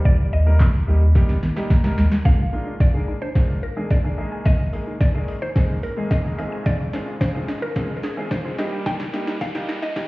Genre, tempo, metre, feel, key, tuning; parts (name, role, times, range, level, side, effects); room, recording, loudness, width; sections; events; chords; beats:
dance-pop; 109 BPM; 4/4; straight; Eb major; A4 = 440 Hz
mallet-like synth pluck; melody; 0.0-10.1 s; Ab4 to G5; -31 LUFS; equal; chorus, dub echo
clear baby grand piano; accompaniment; 0.0-10.1 s; Eb3 to Bb5; -28 LUFS; equal; sidechain pumping
smooth R&B drum kit; drums; 0.1-10.1 s; handclaps, hi-hat, kick drum, shaker, snare drum; -19 LUFS; equal; overdrive
warm sub bass; bass; 0.3-2.1 s; Eb2 to Eb3; -16 LUFS; equal; sidechain pumping
resonant blip pluck; arpeggios; 2.3-10.1 s; Eb3 to Ab5; -34 LUFS; equal; phaser, sidechain pumping, dub echo
riser; sound effects; 3.7-10.1 s; -41 LUFS; equal
tambourine; percussion; 7.2-9.5 s; -59 LUFS; left 6 dB
digital ambience; heard muffled through a wall, stone room reverb, EQ, high-pass filter; -18 LUFS; side -21 dB against mid
0.0-2.3 A section; 2.3-10.1 B section
drum fill 1.2-2.3, 2.3-10.1; grand piano fill 1.4-2.3; build-up 2.3-10.1; filter sweep 2.3-10.1; riser 3.7-10.1
0.0 Eb; 2.3 Bb7/Eb; 4.2 Absus2/Eb; 6.4 Fm/Eb; 8.6 Eb
| 0.05 0.60 1.15 1.71 | 2.25 2.81 3.36 3.91 | 4.46 5.01 5.56 6.11 | 6.66 7.21 7.76 8.31 | 8.86 9.41 9.96